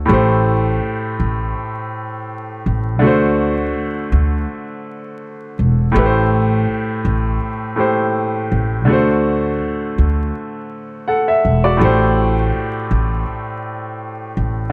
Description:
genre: lo-fi hip hop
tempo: 82 BPM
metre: 4/4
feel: swing 55% on 16ths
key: A dorian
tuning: A4 = 439 Hz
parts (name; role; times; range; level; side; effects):
- bright upright piano; accompaniment; 0.0-14.7 s; A2 to F#5; -20 LUFS; equal; cassette tape, low-pass filter
- upright bass; bass; 0.0-14.7 s; E1 to D2; -20 LUFS; equal; none
room: moderate studio reverb, RT60 0.6 s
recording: vinyl crackle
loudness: -17 LUFS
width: mono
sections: 0.1-14.7 A section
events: none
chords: 0.1 Am7; 3.0 D7; 5.9 Am7; 8.9 D7; 11.8 Am7

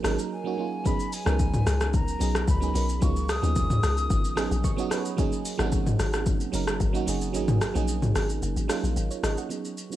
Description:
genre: amapiano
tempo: 111 BPM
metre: 4/4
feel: straight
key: unclear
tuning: A4 = 440 Hz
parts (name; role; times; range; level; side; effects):
- FM electric piano; accompaniment; 0.0-10.0 s; Gb3 to Db6; -30 LUFS; right 7 dB; chorus, low-pass filter, cassette tape
- deep log drum bass; bass; 0.0-9.4 s; Gb1 to Eb2; -27 LUFS; left 1 dB; none
- deep house drum kit; drums; 0.0-10.0 s; hi-hat, kick drum, rim click, shaker, toms; -27 LUFS; left 1 dB; none
- breathy jazz flute; melody; 0.3-4.9, 9.5-10.0 s; Ab5 to Eb6; -33 LUFS; left 2 dB; low-pass filter, tape echo
room: little or no reverb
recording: home recording on cassette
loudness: -23 LUFS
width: side -13 dB against mid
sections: 0.0-9.5 A section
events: drop 0.0-9.5; break 0.3-0.9; FM electric piano fill 4.4-5.2; kick muted 7.3-9.5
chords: 0.0 Ab9sus4; 0.9 Db9sus4; 5.2 Ab9sus4

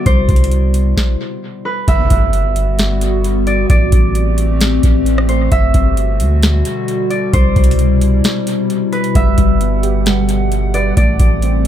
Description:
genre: hip hop, atmospheric cloud-rap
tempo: 132 BPM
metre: 4/4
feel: half-time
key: G major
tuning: A4 = 441 Hz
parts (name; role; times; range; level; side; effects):
- concert harp; melody; 0.0-11.7 s; B4 to E5; -21 LUFS; right 2 dB; dub echo
- warbly tape-like pad; sustained chords; 0.0-11.7 s; B2 to F#5; -19 LUFS; left 3 dB; chorus, built-in reverb, phaser, sidechain pumping
- long sustained 808-style bass; bass; 0.1-11.7 s; G1 to D2; -14 LUFS; equal; none
- booming analog drum machine; drums; 0.1-11.7 s; hi-hat, kick drum, rim click, snare drum; -15 LUFS; equal; none
- impact; sound effects; 1.9-3.7 s; none; -25 LUFS; equal; none
- warbly lo-fi synth keys; arpeggios; 9.1-11.7 s; G3 to B4; -20 LUFS; right 9 dB; chorus, dub echo
room: digital ambience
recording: echo-heavy mix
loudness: -11 LUFS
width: side -11 dB against mid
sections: 0.0-1.9 A section; 1.9-11.7 B section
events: stop 1.0-1.9; impact 1.9-3.7; break 8.2-9.2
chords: 0.1 Cmaj7; 1.9 Gmaj7; 3.7 Am7; 5.5 Gmaj7; 7.3 Cmaj7; 9.2 Gmaj7; 11.0 Am7

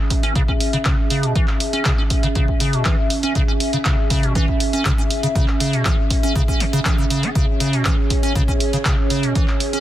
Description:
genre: acid house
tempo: 120 BPM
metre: 4/4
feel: straight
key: C# minor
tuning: A4 = 440 Hz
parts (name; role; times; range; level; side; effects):
- dark analog pad; sustained chords; 0.0-9.8 s; C#4 to E5; -24 LUFS; right 1 dB; chorus, phaser, sidechain pumping
- warm studio string section; texture; 0.0-9.8 s; C#4 to E5; -39 LUFS; left 1 dB; none
- electronic kick drum; drums; 0.1-9.5 s; none; -19 LUFS; equal; none
- punchy analog drum machine; drums; 0.1-9.8 s; handclaps, hi-hat; -25 LUFS; equal; none
- acid bass, square; riff; 0.2-9.8 s; B2 to C#4; -22 LUFS; equal; lush chorus, sidechain pumping, dub echo
room: light reverb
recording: dense, heavily limited modern master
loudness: -16 LUFS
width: side -13 dB against mid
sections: 0.0-9.8 A section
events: none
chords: 0.0 C#m

